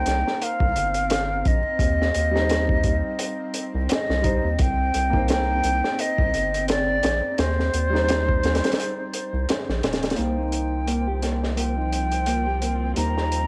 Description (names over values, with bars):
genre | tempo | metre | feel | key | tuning
trip hop | 86 BPM | 4/4 | swing 57% on 16ths | C minor | A4 = 440 Hz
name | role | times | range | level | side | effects
mellow silver concert flute | melody | 0.0-13.5 s | C5 to Bb5 | -28 LUFS | equal | cassette tape, tape echo
felt-muted upright piano | accompaniment | 0.0-13.5 s | G3 to C5 | -34 LUFS | equal | harmonic tremolo, cassette tape
round analog bass | bass | 0.0-13.5 s | Eb1 to Eb2 | -28 LUFS | equal | none
bowed-like drone | texture | 0.2-13.5 s | F3 to F4 | -37 LUFS | equal | built-in reverb, cassette tape
crunchy breakbeat drum kit | drums | 0.1-13.5 s | hi-hat, kick drum, snare drum | -28 LUFS | equal | high-pass filter on kick, high-pass filter on hats, high-pass filter on snare, high-pass filter on room
clear studio string section | sustained chords | 10.2-13.5 s | C4 | -40 LUFS | equal | none
mellow electric guitar | arpeggios | 10.2-13.5 s | Bb3 to G4 | -31 LUFS | equal | low-pass filter, cassette tape
room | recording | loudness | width
small room ambience | home recording on cassette, vinyl crackle | -23 LUFS | mono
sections
0.0-10.2 A section; 10.2-13.5 B section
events
none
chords
0.0 Cm7; 1.8 Eb6; 4.6 Cm7; 7.4 Eb6; 10.2 Cm7; 13.0 Eb6